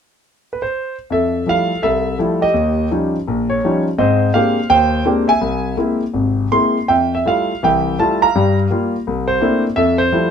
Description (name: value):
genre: solo jazz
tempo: 166 BPM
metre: 4/4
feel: swing 63% on 8ths, rubato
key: F major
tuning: A4 = 440 Hz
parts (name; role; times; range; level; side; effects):
- warm concert grand piano; solo; 0.5-10.3 s; G#1 to C6; -14 LUFS; equal; none
room: light reverb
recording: minimal, uncompressed stereo recording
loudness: -14 LUFS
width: side -7 dB against mid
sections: 0.0-1.1 A section; 1.1-10.3 B section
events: none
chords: 0.0 N.C.; 1.1 Fmaj9; 2.6 Eb9; 4.0 Abmaj9#11; 5.4 Caug7; 6.9 Fmaj9; 8.4 Gm7; 9.1 C13; 9.8 Fmaj9